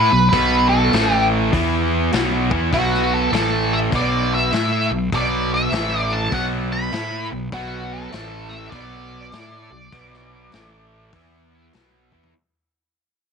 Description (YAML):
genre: blues rock power trio and southern rock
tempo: 100 BPM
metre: 4/4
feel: swing 64% on 8ths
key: B minor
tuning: A4 = 440 Hz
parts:
  - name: octave-fuzz lead guitar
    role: melody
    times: 0.0-11.7 s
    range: F#4 to B5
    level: -21 LUFS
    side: equal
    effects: distortion, slapback echo
  - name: distorted electric guitar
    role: riff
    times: 0.0-12.3 s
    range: A2 to A4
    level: -21 LUFS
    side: equal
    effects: distortion
  - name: fuzz fingered electric bass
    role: bass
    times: 0.0-12.3 s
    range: A1 to A2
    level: -25 LUFS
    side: equal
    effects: overdrive
  - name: vintage drum kit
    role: drums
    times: 0.3-12.3 s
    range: hi-hat, kick drum, snare drum, toms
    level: -25 LUFS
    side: left 5 dB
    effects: none
room: small room ambience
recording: 1960s-style stereo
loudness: -17 LUFS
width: side -6 dB against mid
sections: 0.0-12.3 A section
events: fade-out 0.0-12.3; drum fill 12.0-12.3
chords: 0.0 B5; 0.9 A5; 1.5 E5; 2.1 B5; 3.3 A5; 3.9 B5; 5.7 A5; 6.3 B5; 8.1 A5; 8.7 Bm; 10.5 A5; 11.1 E5; 11.7 B5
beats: | 0.33 0.93 1.53 2.13 | 2.73 3.33 3.93 4.53 | 5.13 5.73 6.33 6.93 | 7.53 8.13 8.73 9.33 | 9.93 10.53 11.13 11.73